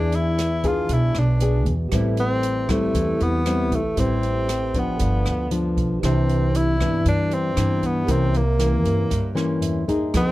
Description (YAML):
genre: bossa nova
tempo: 117 BPM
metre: 4/4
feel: straight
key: A minor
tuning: A4 = 438 Hz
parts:
  - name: mellow tenor saxophone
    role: melody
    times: 0.0-10.3 s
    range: A3 to F4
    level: -24 LUFS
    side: equal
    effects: none
  - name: nylon-string guitar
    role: accompaniment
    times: 0.0-10.3 s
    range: G2 to G#4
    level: -24 LUFS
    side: left 2 dB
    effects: none
  - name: tine electric piano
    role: accompaniment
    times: 0.0-10.3 s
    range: G4 to C6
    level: -34 LUFS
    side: right 6 dB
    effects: medium tremolo
  - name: upright bass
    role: bass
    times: 0.0-10.3 s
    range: G1 to G2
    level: -23 LUFS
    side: equal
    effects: none
  - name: open jazz drum kit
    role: drums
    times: 0.1-10.3 s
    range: hi-hat, kick drum, rim click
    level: -28 LUFS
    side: right 1 dB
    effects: none
room: little or no reverb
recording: dark, warm production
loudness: -19 LUFS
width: side -17 dB against mid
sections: 0.0-6.0 A section; 6.0-10.3 B section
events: tine electric piano fill 9.1-10.1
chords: 0.0 E7; 1.9 Am7; 5.0 G7; 6.0 Cmaj9; 8.1 C7b9